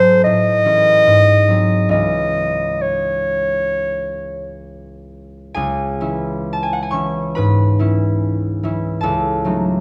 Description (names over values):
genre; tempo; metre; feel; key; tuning
classical, romantic duo for clarinet and harp; 63-77 BPM; 4/4; rubato; C# minor; A4 = 436 Hz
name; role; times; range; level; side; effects
warm clarinet; melody; 0.0-4.6 s; B#4 to D#5; -17 LUFS; equal; none
concert harp; accompaniment; 0.0-9.8 s; C#2 to C#6; -20 LUFS; equal; none
room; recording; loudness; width
wet recital hall reverb, RT60 1.9 s; none; -17 LUFS; mono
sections
0.0-5.5 A section; 5.5-9.8 B section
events
none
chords
0.2 Amaj7; 1.0 G#7; 1.9 C#m; 9.0 D#dim/C#